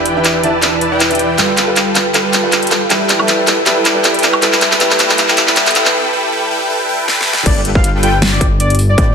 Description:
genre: future bass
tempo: 158 BPM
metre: 4/4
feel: swing 54% on 16ths, half-time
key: unclear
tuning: A4 = 440 Hz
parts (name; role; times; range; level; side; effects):
- bright baby grand piano; accompaniment; 0.0-5.9 s; E3 to E5; -18 LUFS; right 1 dB; sidechain pumping, ping-pong delay
- supersaw chords; riff; 0.0-9.1 s; E3 to A5; -15 LUFS; equal; sidechain pumping, ping-pong delay
- fat analog bass; bass; 0.0-9.1 s; E1 to C2; -19 LUFS; equal; sidechain pumping
- dubstep drum kit; drums; 0.1-9.1 s; crash cymbal, handclaps, hi-hat, snare drum, woodblock; -13 LUFS; equal; none
- riser; sound effects; 2.8-5.9 s; none; -25 LUFS; equal; none
- warm velvety synth lead; melody; 7.5-9.1 s; D5 to G5; -18 LUFS; left 2 dB; chorus, sidechain pumping, tape echo
- electronic kick drum; drums; 7.5-9.1 s; none; -13 LUFS; equal; distortion
room: wet digital room reverb, RT60 1.1 s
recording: dense, heavily limited modern master, high-pass filter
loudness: -10 LUFS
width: side -6 dB against mid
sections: 0.0-7.5 A section; 7.5-9.1 B section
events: build-up 0.0-7.5; drum fill 0.0-5.9, 7.1-7.5; filter sweep on supersaw synth 0.0-7.5; break 5.9-7.5; drop 7.5-9.1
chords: 0.0 Em7; 1.4 G9; 2.9 Asus2; 4.2 Cmaj7; 5.9 Em; 7.5 G9

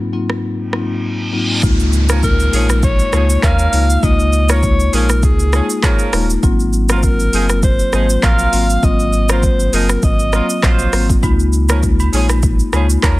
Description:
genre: afrobeats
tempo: 100 BPM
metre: 4/4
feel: swing 55% on 16ths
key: Db major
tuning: A4 = 442 Hz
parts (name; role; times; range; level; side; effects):
- marimba with medium mallets; accompaniment; 0.1-12.9 s; Ab2 to F4; -19 LUFS; left 3 dB; none
- afro-pop drum kit; drums; 0.3-13.2 s; handclaps, hi-hat, kick drum, rim click, shaker; -16 LUFS; equal; soft clipping on snare
- reverse cymbal and downlifter; sound effects; 0.9-6.4 s; none; -26 LUFS; right 1 dB; none
- warm sub bass; bass; 1.6-13.2 s; Eb1 to Eb2; -15 LUFS; equal; none
- mellow horn section; second line; 2.1-13.2 s; F3 to C5; -23 LUFS; right 3 dB; none
- warm alto saxophone; melody; 2.2-10.9 s; Ab4 to F5; -20 LUFS; equal; tape echo
- agogo bells and woodblock; percussion; 11.2-13.2 s; none; -29 LUFS; right 5 dB; none
room: studio ambience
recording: dense, heavily limited modern master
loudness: -12 LUFS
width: side -18 dB against mid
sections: 0.0-1.6 A section; 1.6-13.2 B section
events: reverse cymbal 0.9-1.6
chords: 0.0 Ab13; 1.6 Db6; 6.4 Ab13; 11.2 Db6

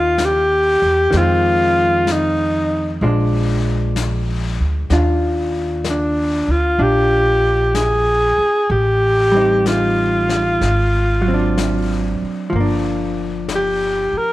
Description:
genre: jazz ballad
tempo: 63 BPM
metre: 4/4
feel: swing 67% on 8ths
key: unclear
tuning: A4 = 441 Hz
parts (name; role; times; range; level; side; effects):
- breathy alto saxophone; melody; 0.0-14.3 s; D4 to Bb4; -16 LUFS; equal; none
- vintage hollow-body jazz guitar; accompaniment; 0.0-14.3 s; Eb3 to F4; -22 LUFS; equal; none
- upright bass; bass; 0.0-14.2 s; G1 to F2; -20 LUFS; equal; none
- vintage brush drum kit; drums; 0.2-14.3 s; brushed snare drum, hi-hat, snare drum; -29 LUFS; left 6 dB; none
room: light reverb, small room reverb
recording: 1960s-style stereo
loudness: -14 LUFS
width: side -16 dB against mid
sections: 0.0-14.3 A section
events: none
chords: 0.0 Cm7 (rootless); 1.1 Fm7; 3.0 Bb7; 4.9 Ebmaj9; 8.7 Am7b5; 10.6 Ab7#11; 12.5 Gm7

